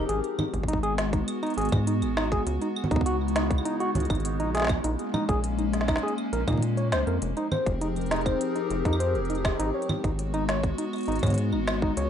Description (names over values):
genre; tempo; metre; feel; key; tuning
IDM; 101 BPM; 4/4; straight; unclear; A4 = 439 Hz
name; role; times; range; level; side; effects
warbly tape-like pad; sustained chords; 0.0-12.1 s; Db3 to Bb4; -30 LUFS; left 2 dB; chorus, built-in reverb, phaser, plate reverb
overdriven tine electric piano; arpeggios; 0.0-12.1 s; Eb4 to Db5; -30 LUFS; right 1 dB; tape echo, plate reverb
rubbery square bass; bass; 0.0-12.1 s; F1 to Bb2; -29 LUFS; equal; none
organic electronic drum kit; drums; 0.1-12.1 s; claves, congas, hi-hat, snare drum; -31 LUFS; right 1 dB; overdrive
electronic kick drum; drums; 0.5-11.9 s; none; -29 LUFS; equal; overdrive
room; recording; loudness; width
moderate studio reverb, RT60 0.6 s; rough home demo mix, nothing above 10.4 kHz; -24 LUFS; side -9 dB against mid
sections
0.0-12.1 A section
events
none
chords
0.1 Abm7; 2.5 Dbm11; 4.5 Bbm11; 7.2 Fm11; 9.6 Abm7